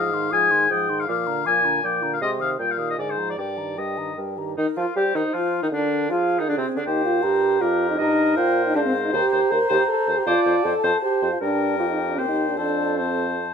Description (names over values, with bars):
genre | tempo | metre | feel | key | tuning
quick classical-period movement for wind quintet | 158 BPM | 3/4 | straight | Eb major | A4 = 439 Hz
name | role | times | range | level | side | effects
mellow hollow concert flute | melody | 0.0-13.5 s | C4 to G6 | -29 LUFS | left 11 dB | none
clear oboe | second line | 0.0-13.5 s | C4 to Ab5 | -24 LUFS | left 4 dB | none
warm French horn | accompaniment | 0.0-13.4 s | D3 to Bb4 | -24 LUFS | right 1 dB | none
warm clarinet | accompaniment | 0.0-13.5 s | D4 to Eb5 | -29 LUFS | right 9 dB | none
mellow bassoon | bass | 0.0-13.5 s | Eb2 to G3 | -27 LUFS | right 2 dB | none
room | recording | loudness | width
moderate large studio reverb, RT60 0.9 s | none | -19 LUFS | side -6 dB against mid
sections
0.0-4.6 A section; 4.6-13.5 A section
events
none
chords
0.0 Fm7/Ab; 1.1 Bb; 2.2 Ab/C; 2.6 Eb/Bb; 3.0 Bb7/Ab; 3.4 Eb/G; 4.6 Eb; 5.7 Bb7/D; 6.9 Eb; 8.0 Eb/G; 9.1 Cm7/Eb; 10.3 F; 11.4 Gm; 12.2 Cm/Eb; 12.6 F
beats
0.32 0.70 | 1.08 1.46 1.83 | 2.21 2.59 2.98 | 3.38 3.78 4.18 | 4.58 4.96 5.34 | 5.72 6.11 6.49 | 6.86 7.24 7.62 | 8.00 8.37 8.75 | 9.13 9.51 9.88 | 10.27 10.65 11.03 | 11.41 11.79 12.18 | 12.58 12.98 13.39